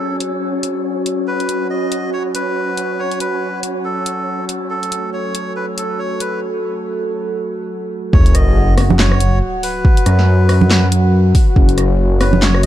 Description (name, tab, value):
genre	deep dubstep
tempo	140 BPM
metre	4/4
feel	swing 58% on 16ths, half-time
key	F# dorian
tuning	A4 = 440 Hz
part	melodica	melody	0.0-12.7 s	A4 to D#5	-24 LUFS	equal	dub echo
part	dark analog pad	sustained chords	0.0-12.7 s	F#4 to G#5	-22 LUFS	equal	chorus
part	wind-like tuned noise texture	texture	0.0-6.4 s	C#4 to C#5	-25 LUFS	left 2 dB	built-in reverb
part	deep house drum kit	drums	0.2-12.7 s	handclaps, hi-hat, rim click, snare drum	-20 LUFS	equal	none
part	dark detuned saw bass	bass	8.1-12.7 s	F#1 to F#2	-13 LUFS	equal	tube saturation
part	electronic kick drum	drums	8.1-11.7 s	none	-11 LUFS	equal	none
part	sub drop	sound effects	8.1-9.8 s	none	-18 LUFS	equal	none
part	congas	percussion	8.8-12.4 s	none	-18 LUFS	right 4 dB	none
room	digital ambience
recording	dark, warm production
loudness	-14 LUFS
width	side -13 dB against mid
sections	0.0-8.1 A section; 8.1-12.7 B section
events	drop 8.1-12.7; impact 8.1-9.8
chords	0.0 F#m; 8.1 F#5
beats	0.42 0.85 | 1.28 1.70 2.13 2.56 | 2.99 3.42 3.85 4.28 | 4.70 5.13 5.56 5.99 | 6.42 6.85 7.28 7.70 | 8.13 8.56 8.99 9.42 | 9.85 10.28 10.70 11.13 | 11.56 11.99 12.42